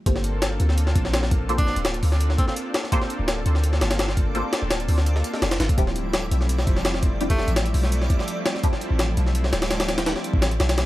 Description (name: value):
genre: drum and bass, jungle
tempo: 168 BPM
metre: 4/4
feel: straight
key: G minor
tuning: A4 = 441 Hz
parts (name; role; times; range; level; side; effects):
- lush unison pad; sustained chords; 0.1-10.9 s; F3 to A4; -30 LUFS; equal; chorus, vintage 12-bit sampler grit
- filtered dub chord stab; stabs; 0.1-10.9 s; F3 to C5; -32 LUFS; left 1 dB; phaser, ensemble chorus, dub echo
- warm 808-style bass; bass; 0.1-10.9 s; D1 to D2; -23 LUFS; equal; none
- jungle sampler-style drum kit; drums; 0.1-10.9 s; hi-hat, kick drum, snare drum; -23 LUFS; equal; overdrive, studio reverb
- backwards swelling texture; texture; 0.1-10.9 s; D5; -38 LUFS; right 2 dB; built-in reverb
- bright tenor saxophone; melody; 1.6-2.5, 7.3-7.5 s; A3 to D4; -33 LUFS; equal; dub echo
room: little or no reverb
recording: vinyl crackle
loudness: -20 LUFS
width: side -16 dB against mid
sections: 0.1-10.9 A section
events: drop 0.1-10.9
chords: 0.1 Gm11; 5.8 Dm11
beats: | 0.06 0.42 0.78 1.14 | 1.49 1.85 2.21 2.56 | 2.92 3.28 3.63 3.99 | 4.35 4.71 5.06 5.42 | 5.78 6.13 6.49 6.85 | 7.21 7.56 7.92 8.28 | 8.63 8.99 9.35 9.71 | 10.06 10.42 10.78